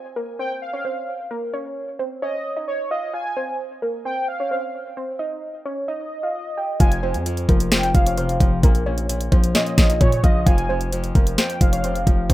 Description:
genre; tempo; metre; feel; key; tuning
hip hop, trap; 131 BPM; 4/4; half-time; F minor; A4 = 440 Hz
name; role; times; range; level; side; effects
warbly dusty pluck; melody; 0.0-12.3 s; Bb4 to G5; -28 LUFS; right 2 dB; chorus, plate reverb, tape echo
warm velvety synth lead; second line; 0.4-12.3 s; Db5 to Ab5; -26 LUFS; equal; chorus, plate reverb, tape echo
Celtic harp; accompaniment; 6.8-12.3 s; F2 to F3; -26 LUFS; left 3 dB; none
distorted 808-style bass; bass; 6.8-12.3 s; F1 to Bb2; -24 LUFS; equal; distortion
trap drum kit; drums; 6.8-12.3 s; hi-hat, kick drum, snare drum; -16 LUFS; equal; none
room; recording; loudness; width
light reverb; rough home demo mix; -19 LUFS; side -16 dB against mid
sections
0.0-12.3 A section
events
none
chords
0.0 N.C.; 6.8 Fm; 8.6 Bbm; 10.5 Fm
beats
0.39 0.85 | 1.31 1.76 2.22 2.68 | 3.14 3.60 4.05 4.51 | 4.97 5.43 5.89 6.34 | 6.80 7.26 7.72 8.18 | 8.63 9.09 9.55 10.01 | 10.47 10.92 11.38 11.84 | 12.30

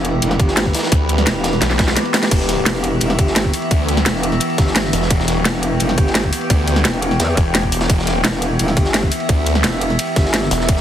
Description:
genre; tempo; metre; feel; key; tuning
dark technical drum and bass; 172 BPM; 4/4; straight; E minor; A4 = 440 Hz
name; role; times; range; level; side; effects
metallic inharmonic drone; sustained chords; 0.0-10.8 s; E3 to G5; -21 LUFS; equal; chorus, built-in reverb, sidechain pumping
metallic wobble bass; bass; 0.0-10.5 s; E1 to E2; -19 LUFS; equal; chorus
drum and bass drum kit; drums; 0.0-10.8 s; crash cymbal, hi-hat, ride cymbal, snare drum; -20 LUFS; equal; overdrive, studio reverb
crunchy breakbeat drum kit; drums; 0.1-10.8 s; ride cymbal, snare drum; -26 LUFS; equal; high-pass filter on cymbals, studio reverb, high-pass filter on snare, high-pass filter on room
electronic kick drum; drums; 0.4-10.8 s; none; -16 LUFS; equal; overdrive, studio reverb
snarling distorted saw bass; bass; 0.9-10.8 s; E1 to D2; -19 LUFS; equal; distortion, tube saturation
room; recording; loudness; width
light reverb, digital ambience; heavily compressed radio sound, multiband compression; -14 LUFS; side -10 dB against mid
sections
0.0-10.8 A section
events
drum fill 1.6-2.3; kick drops out 2.0-2.3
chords
0.0 Em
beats
0.22 0.57 | 0.92 1.27 1.62 1.97 | 2.31 2.66 3.01 3.36 | 3.71 4.06 4.41 4.76 | 5.11 5.45 5.80 6.15 | 6.50 6.85 7.20 7.55 | 7.90 8.24 8.59 8.94 | 9.29 9.64 9.99 10.34 | 10.69

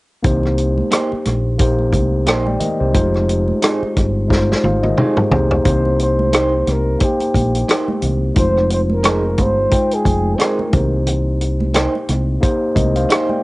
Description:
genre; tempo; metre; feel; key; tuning
lush 1970s-style soul; 89 BPM; 4/4; swing 58% on 16ths; C minor; A4 = 443 Hz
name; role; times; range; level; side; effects
mellow tine electric piano; accompaniment; 0.2-13.4 s; Ab3 to G5; -20 LUFS; left 1 dB; cassette tape, plate reverb
fingered electric bass; bass; 0.2-13.0 s; F1 to C2; -18 LUFS; equal; none
warm soul drum kit; drums; 0.2-13.3 s; hi-hat, kick drum, rim click, snare drum, toms; -18 LUFS; equal; cassette tape
congas; percussion; 0.2-13.4 s; none; -27 LUFS; right 3 dB; none
electric guitar through a small old amp; riff; 0.9-13.3 s; Bb3 to C5; -22 LUFS; right 2 dB; spring reverb, cassette tape
breathy flugelhorn; melody; 5.7-10.9 s; G4 to C5; -20 LUFS; equal; cassette tape, plate reverb
room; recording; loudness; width
light reverb; home recording on cassette, nothing above 10.4 kHz; -14 LUFS; side -21 dB against mid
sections
0.2-5.7 A section; 5.7-13.4 B section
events
drum fill 4.3-5.7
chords
0.2 Cm7; 2.9 Fm7; 5.3 Cm7; 8.4 Fm7; 10.7 Cm7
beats
| 0.24 0.92 1.59 2.27 | 2.95 3.62 4.30 4.98 | 5.65 6.33 7.01 7.68 | 8.36 9.04 9.72 10.39 | 11.07 11.75 12.42 13.10

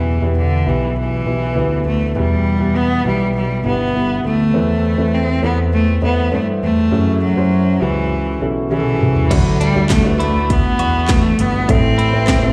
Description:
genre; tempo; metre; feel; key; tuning
piano-driven pop; 101 BPM; 4/4; straight; E minor; A4 = 440 Hz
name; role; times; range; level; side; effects
bright cello; melody; 0.0-12.5 s; D3 to C4; -21 LUFS; equal; slapback echo
dark upright piano; accompaniment; 0.0-12.5 s; A2 to C5; -23 LUFS; equal; slapback echo
fat analog bass; bass; 0.0-12.5 s; G1 to G2; -20 LUFS; equal; none
house drum kit; drums; 8.7-12.4 s; crash cymbal, handclaps, hi-hat, kick drum, snare drum, toms; -20 LUFS; equal; none
twelve-string electric guitar; riff; 9.3-12.1 s; B3 to F#4; -27 LUFS; equal; spring reverb, slapback echo
group handclap; percussion; 9.9-12.4 s; none; -33 LUFS; equal; none
room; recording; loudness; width
little or no reverb; live gig heard through the venue's PA, recital hall reverb; -16 LUFS; mono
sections
0.0-9.3 A section; 9.3-12.5 B section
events
drum fill 8.7-9.3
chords
0.0 Em; 4.5 Amadd9/E; 6.9 F#m7; 9.3 Dadd9; 11.7 Am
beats
0.37 0.96 1.56 | 2.16 2.75 3.35 3.95 | 4.54 5.14 5.74 6.33 | 6.93 7.52 8.12 8.72 | 9.31 9.91 10.50 11.10 | 11.69 12.29

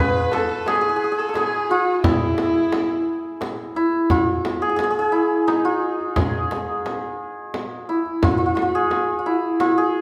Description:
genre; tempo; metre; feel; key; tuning
Persian modal ensemble; 87 BPM; 3/4; straight; unclear; A4 = 441 Hz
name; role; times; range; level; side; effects
santur; melody; 0.0-10.0 s; D#4 to D#5; -22 LUFS; equal; none
rich kamancheh; second line; 0.0-3.4 s; E4 to B4; -29 LUFS; equal; none
frame drum; percussion; 0.3-9.8 s; none; -30 LUFS; equal; none
tombak; percussion; 0.3-9.8 s; none; -27 LUFS; equal; none
room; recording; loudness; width
wet recital hall reverb, RT60 1.3 s; recorded in a church or concert hall; -21 LUFS; mono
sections
0.0-4.1 A section; 4.1-10.0 B section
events
none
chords
none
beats
0.67 1.36 | 2.05 2.73 3.42 | 4.11 4.80 5.48 | 6.17 6.86 7.55 | 8.23 8.92 9.61

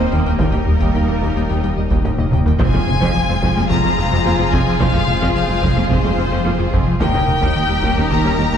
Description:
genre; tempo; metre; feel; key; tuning
cinematic, hybrid orchestral and electronic film score; 109 BPM; 4/4; straight; F minor; A4 = 437 Hz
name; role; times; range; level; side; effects
dark chamber violin section; melody; 0.0-8.6 s; C5 to Bb5; -23 LUFS; left 4 dB; none
rich symphonic violin section; second line; 0.0-8.6 s; F4 to C5; -26 LUFS; left 3 dB; none
warm symphonic viola section; accompaniment; 0.0-8.6 s; F3 to Eb4; -25 LUFS; right 2 dB; none
analog string pad; sustained chords; 0.0-8.6 s; Eb3 to Eb5; -26 LUFS; right 1 dB; ensemble chorus
mellow French horn section; sustained chords; 0.0-8.6 s; Bb3 to F4; -29 LUFS; left 2 dB; none
thumb-piano-like synth pluck; arpeggios; 0.0-8.6 s; Eb3 to F4; -25 LUFS; left 2 dB; chorus, tape echo
round analog bass; riff; 0.0-8.6 s; Eb2 to F3; -22 LUFS; left 1 dB; none
rich symphonic cello section; bass; 0.0-8.6 s; Eb2 to F2; -26 LUFS; right 2 dB; none
saturated sub bass; bass; 0.0-8.6 s; Eb1 to F1; -26 LUFS; equal; none
clear chamber double bass section; bass; 0.1-8.4 s; F1 to Eb2; -24 LUFS; right 3 dB; none
taiko ensemble; drums; 0.3-8.6 s; none; -21 LUFS; equal; none
impact; sound effects; 2.6-4.8 s; none; -27 LUFS; equal; none
room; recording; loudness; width
wet recital hall reverb, RT60 1.4 s; heard from further back in the room; -14 LUFS; side -8 dB against mid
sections
0.0-2.6 A section; 2.6-8.6 B section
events
drum fill 2.1-2.6; impact 2.6-4.8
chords
0.0 Eb; 2.6 Fm; 7.0 Eb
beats
| 0.40 0.95 1.50 2.05 | 2.60 3.15 3.70 4.25 | 4.80 5.35 5.90 6.45 | 7.00 7.55 8.11

